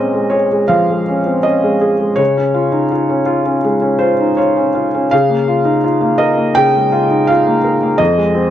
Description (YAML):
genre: neoclassical minimalist piano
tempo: 82 BPM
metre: 4/4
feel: rubato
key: Bb dorian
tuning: A4 = 436 Hz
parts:
  - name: felt-muted upright piano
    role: solo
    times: 0.0-8.5 s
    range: F2 to G5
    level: -11 LUFS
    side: equal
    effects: none
room: studio ambience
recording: dry, close 1970s-style studio recording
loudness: -11 LUFS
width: side -11 dB against mid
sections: 0.0-8.5 A section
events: none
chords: 0.0 Bbm7; 2.2 Db; 5.1 Bbm7/Db; 8.0 Fm7